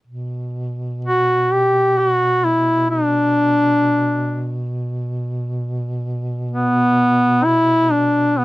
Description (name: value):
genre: caucasian folk, Caucasian lament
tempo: 65 BPM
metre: 3/4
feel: rubato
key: B minor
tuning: A4 = 439 Hz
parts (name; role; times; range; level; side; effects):
- dark duduk; drone; 0.1-8.4 s; B2; -24 LUFS; right 1 dB; none
- clear duduk; melody; 1.0-8.4 s; B3 to G4; -14 LUFS; equal; none
room: little or no reverb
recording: close, detailed microphones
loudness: -15 LUFS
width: side -17 dB against mid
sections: 0.0-8.4 A section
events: none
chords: none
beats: | 0.08 1.04 1.98 | 2.90 3.81 4.71 | 5.61 6.52 7.46 | 8.40